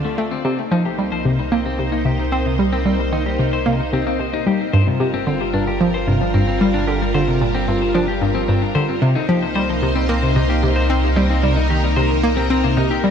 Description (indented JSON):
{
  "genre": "ambient, sequencer-driven space music",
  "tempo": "112 BPM",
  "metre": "4/4",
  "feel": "straight",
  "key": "C minor",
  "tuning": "A4 = 440 Hz",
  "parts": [
    { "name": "string machine, full ensemble", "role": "sustained chords", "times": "0.0-13.1 s", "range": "G3 to D5", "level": "-22 LUFS", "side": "right 1 dB", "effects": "ensemble chorus" },
    { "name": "clean electric guitar", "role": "arpeggios", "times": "0.0-13.0 s", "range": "C3 to C5", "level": "-23 LUFS", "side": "moving between left 7 dB and equal", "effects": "auto-pan, ping-pong delay" },
    { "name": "analog pluck", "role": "riff", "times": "0.0-13.1 s", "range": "G2 to C4", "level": "-20 LUFS", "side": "equal", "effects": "chorus, ping-pong delay" },
    { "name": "round analog bass", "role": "bass", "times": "0.0-13.1 s", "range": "G1 to D2", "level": "-23 LUFS", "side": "equal", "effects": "none" }
  ],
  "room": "moderate plate reverb, RT60 3.2 s",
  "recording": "none",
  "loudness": "-16 LUFS",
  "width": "side -7 dB against mid",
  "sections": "0.0-13.1 A section",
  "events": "none",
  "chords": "0.4 Cm7; 4.7 Gm7; 9.0 Cm7"
}